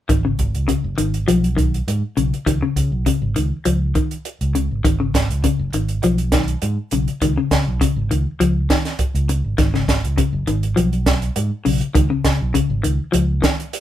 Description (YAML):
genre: afrobeat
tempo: 101 BPM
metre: 4/4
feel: straight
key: G# dorian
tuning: A4 = 440 Hz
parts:
  - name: clean electric guitar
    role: arpeggios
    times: 0.1-13.6 s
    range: C#3 to E#3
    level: -20 LUFS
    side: left 4 dB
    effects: warbly pitch drift
  - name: fingered electric bass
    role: bass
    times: 0.1-13.4 s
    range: F#1 to C#3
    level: -20 LUFS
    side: right 1 dB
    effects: none
  - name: compact cocktail drum kit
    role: drums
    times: 0.1-13.8 s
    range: hi-hat, kick drum, snare drum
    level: -20 LUFS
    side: right 1 dB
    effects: none
room: moderate studio ambience, RT60 0.4 s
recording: band playing live in one room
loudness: -17 LUFS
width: side -12 dB against mid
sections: 0.1-13.8 A section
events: none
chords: 0.1 G#m; 2.5 C#5; 4.8 G#m; 7.2 C#5; 9.6 G#m; 12.0 C#5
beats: | 0.10 0.70 1.29 1.88 | 2.48 3.07 3.66 4.26 | 4.85 5.44 6.04 6.63 | 7.22 7.81 8.41 9.00 | 9.59 10.18 10.78 11.37 | 11.96 12.55 13.14 13.73